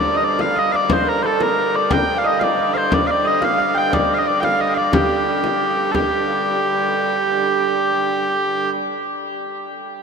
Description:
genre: medieval dance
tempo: 120 BPM (dotted quarters)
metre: 6/8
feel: straight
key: G minor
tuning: A4 = 440 Hz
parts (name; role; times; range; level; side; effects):
- mellow small bagpipes; melody; 0.0-8.7 s; G4 to G5; -19 LUFS; equal; none
- concert harp; second line; 0.0-9.4 s; G4 to G5; -23 LUFS; right 2 dB; none
- clear hurdy-gurdy; drone; 0.0-8.7 s; G2 to D3; -25 LUFS; right 2 dB; none
- frame drum; percussion; 0.4-6.1 s; none; -24 LUFS; left 2 dB; none
room: wet huge ambient reverb, RT60 8.4 s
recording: in a vast, echoing space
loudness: -16 LUFS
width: side -5 dB against mid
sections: 0.0-5.9 A section; 5.9-7.9 B section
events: none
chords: none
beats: 0.40 | 0.91 1.41 | 1.91 2.42 | 2.92 3.42 | 3.92 4.42 | 4.93 5.43 | 5.93 6.43 | 6.93 7.43

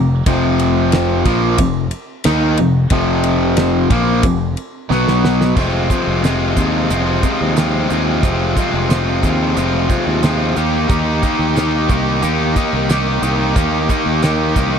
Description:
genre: classic rock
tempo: 90 BPM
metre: 4/4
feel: straight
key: F minor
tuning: A4 = 440 Hz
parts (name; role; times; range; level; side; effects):
- biting overdriven guitar; riff; 0.0-14.8 s; F2 to G4; -19 LUFS; right 13 dB; spring reverb
- distorted electric guitar; riff; 0.0-14.8 s; F2 to G4; -18 LUFS; left 13 dB; distortion
- growling fingered electric bass; bass; 0.0-14.8 s; F1 to Eb2; -19 LUFS; right 1 dB; overdrive
- damped 70s drum kit; drums; 0.3-14.7 s; crash cymbal, hi-hat, kick drum, ride cymbal, snare drum; -18 LUFS; right 1 dB; none
room: little or no reverb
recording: dry, close 1970s-style studio recording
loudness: -13 LUFS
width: side -7 dB against mid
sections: 0.0-5.6 A section; 5.6-14.8 B section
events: drum fill 4.9-5.6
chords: 0.0 F5; 4.9 B5; 5.6 Fm; 10.6 Eb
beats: | 0.27 0.93 1.59 2.25 | 2.92 3.58 4.24 4.91 | 5.57 6.24 6.90 7.57 | 8.23 8.90 9.57 10.23 | 10.90 11.56 12.23 12.90 | 13.56 14.23

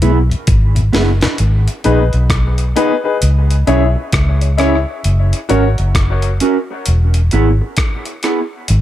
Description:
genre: dub reggae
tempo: 66 BPM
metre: 4/4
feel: swing 62% on 16ths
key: unclear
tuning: A4 = 440 Hz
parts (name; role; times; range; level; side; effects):
- mellow electric guitar; accompaniment; 0.0-8.4 s; B3 to A#4; -19 LUFS; right 4 dB; high-pass filter, dub echo
- mellow tonewheel organ; accompaniment; 0.0-1.3 s; E2 to E4; -21 LUFS; left 3 dB; slow rotary speaker
- vintage muted fingered electric bass; bass; 0.0-8.8 s; E1 to C#2; -12 LUFS; equal; none
- breakbeat sampler-style drum kit; drums; 0.0-8.8 s; hi-hat, kick drum, rim click, snare drum; -18 LUFS; equal; none
- warm upright piano; stabs; 1.8-5.7 s; D#4 to C#5; -20 LUFS; left 6 dB; high-pass filter, dub echo
room: light reverb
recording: none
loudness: -12 LUFS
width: side -12 dB against mid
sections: 0.0-1.4 A section; 1.4-8.8 B section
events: break 0.0-1.4; drum fill 0.5-1.4; filter sweep 5.0-8.8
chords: 0.0 E; 1.4 G#m; 3.2 C#m; 5.0 F#; 6.9 E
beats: 0.47 | 1.39 2.30 3.21 4.13 | 5.04 5.95 6.86 7.78 | 8.69

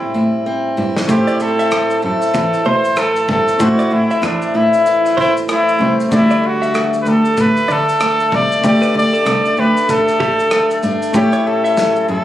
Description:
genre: acoustic pop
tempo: 96 BPM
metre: 4/4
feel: swing 60% on 16ths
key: unclear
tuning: A4 = 445 Hz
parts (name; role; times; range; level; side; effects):
- clear trumpet; melody; 0.0-12.2 s; D4 to D5; -16 LUFS; equal; plate reverb
- picked steel-string acoustic guitar; accompaniment; 0.0-12.2 s; A2 to G4; -19 LUFS; equal; none
- warm cello; bass; 0.2-12.2 s; C2 to D3; -17 LUFS; equal; none
- loose indie drum kit; drums; 1.0-12.1 s; kick drum, rim click, shaker, snare drum; -25 LUFS; equal; none
- clear concert grand piano; accompaniment; 1.1-12.2 s; G3 to D5; -23 LUFS; left 2 dB; none
- direct-recorded clean electric guitar; arpeggios; 1.3-12.1 s; G4 to E5; -21 LUFS; equal; none
room: moderate small room ambience, RT60 0.5 s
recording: recorded on a phone in the room, studio ambience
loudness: -12 LUFS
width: side -12 dB against mid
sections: 0.0-1.1 A section; 1.1-12.2 B section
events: drum fill 0.0-1.1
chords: 0.0 Am7; 1.1 Am; 6.1 Dsus4; 11.1 A7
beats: 0.46 | 1.09 1.72 2.35 2.97 | 3.60 4.23 4.86 5.49 | 6.12 6.75 7.37 8.00 | 8.63 9.26 9.89 10.52 | 11.14 11.77

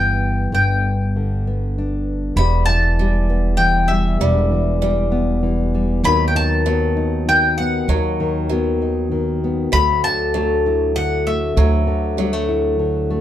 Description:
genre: acoustic folk duo or small band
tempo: 98 BPM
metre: 3/4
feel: straight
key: unclear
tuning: A4 = 440 Hz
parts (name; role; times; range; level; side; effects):
- mandolin; melody; 0.0-12.5 s; E5 to B5; -20 LUFS; left 2 dB; none
- nylon-string guitar; accompaniment; 0.0-13.2 s; D2 to E4; -21 LUFS; left 3 dB; none
- upright bass; bass; 0.0-13.2 s; E1 to D#2; -20 LUFS; right 1 dB; none
- picked acoustic archtop guitar; arpeggios; 2.4-13.2 s; F#3 to G3; -25 LUFS; right 2 dB; none
room: light reverb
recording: none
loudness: -16 LUFS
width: side -11 dB against mid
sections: 0.0-2.4 A section; 2.4-13.2 B section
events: none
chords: 0.0 Em/G; 0.5 G; 2.4 Em; 6.0 B/D#; 9.7 Dadd9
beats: | 0.53 1.14 1.76 | 2.37 2.98 3.60 | 4.21 4.82 5.43 | 6.05 6.66 7.27 | 7.88 8.50 9.11 | 9.73 10.34 10.96 | 11.57 12.19 12.80

